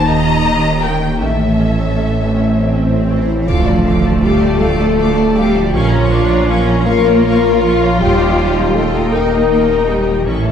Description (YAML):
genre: cinematic, hybrid orchestral and electronic film score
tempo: 53 BPM (dotted quarters)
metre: 6/8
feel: straight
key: D harmonic minor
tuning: A4 = 440 Hz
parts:
  - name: warm studio violin section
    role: melody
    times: 0.0-10.5 s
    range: E5 to D6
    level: -23 LUFS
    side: left 3 dB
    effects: none
  - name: warm symphonic violin section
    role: second line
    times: 0.0-10.5 s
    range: A4 to G5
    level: -24 LUFS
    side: left 2 dB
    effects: none
  - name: hollow soft pad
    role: sustained chords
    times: 0.0-10.5 s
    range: Bb2 to E5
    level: -21 LUFS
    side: equal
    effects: chorus
  - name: mellow French horn section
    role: sustained chords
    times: 0.0-10.5 s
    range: A3 to Bb4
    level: -17 LUFS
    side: left 4 dB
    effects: none
  - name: wide detuned saw bass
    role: bass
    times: 0.0-10.5 s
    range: D1 to Bb1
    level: -22 LUFS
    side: equal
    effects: chorus
  - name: warm symphonic viola section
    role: accompaniment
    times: 0.1-10.5 s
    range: A3 to F4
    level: -20 LUFS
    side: equal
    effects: none
  - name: rich symphonic double bass section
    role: bass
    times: 0.1-10.5 s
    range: A1 to Eb2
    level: -19 LUFS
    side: right 2 dB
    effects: none
  - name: warm symphonic cello section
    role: bass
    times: 0.1-10.5 s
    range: A2 to Bb3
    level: -18 LUFS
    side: right 2 dB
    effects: none
  - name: swell and impact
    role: sound effects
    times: 2.1-5.7 s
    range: none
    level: -22 LUFS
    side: equal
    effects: none
room: wet recital hall reverb, RT60 1.7 s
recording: heard from further back in the room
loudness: -11 LUFS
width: side -8 dB against mid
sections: 0.0-3.5 A section; 3.5-10.5 B section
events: swell 2.1-3.5; impact 3.5-5.7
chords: 0.0 Eb; 1.2 A; 3.5 Dm; 5.7 Bbm; 8.0 Eb